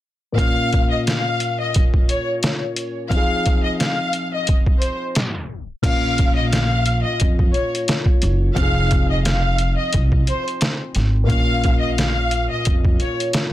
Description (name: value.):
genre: hip hop, boom-bap hip-hop.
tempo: 88 BPM.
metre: 4/4.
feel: swing 56% on 16ths.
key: Bb minor.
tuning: A4 = 441 Hz.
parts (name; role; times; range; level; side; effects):
dark concert grand piano; accompaniment; 0.3-13.5 s; Bb2 to Ab4; -25 LUFS; left 2 dB; cassette tape, plate reverb.
dark studio violin section; melody; 0.4-13.2 s; C5 to F5; -24 LUFS; left 1 dB; plate reverb, ping-pong delay.
trip hop sampler-style drum kit; drums; 0.4-13.5 s; crash cymbal, hi-hat, kick drum, snare drum; -19 LUFS; equal; none.
upright bass; bass; 5.8-12.9 s; F1 to F2; -20 LUFS; equal; none.
room: little or no reverb.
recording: dense, heavily limited modern master, tape stop.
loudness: -17 LUFS.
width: side -14 dB against mid.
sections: 0.4-5.8 A section; 5.8-13.5 B section.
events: tape stop 5.2-5.8.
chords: 0.4 Bbm; 3.1 Fm7; 5.8 Bbm; 8.6 Fm7; 11.3 Bbm.